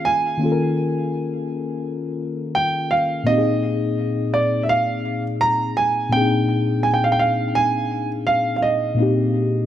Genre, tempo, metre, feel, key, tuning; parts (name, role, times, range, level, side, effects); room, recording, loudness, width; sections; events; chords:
R&B; 84 BPM; 4/4; swing 58% on 16ths; A4 = 437 Hz
dark grand piano; melody; 0.0-9.7 s; D5 to Bb5; -20 LUFS; right 2 dB; tape echo
muted felt-like synth keys; accompaniment; 0.0-9.7 s; Bb2 to Bb4; -21 LUFS; left 2 dB; chorus
light reverb, studio ambience; -18 LUFS; side -11 dB against mid
0.0-9.7 A section
0.0 Eb9sus4; 3.3 Bb9sus4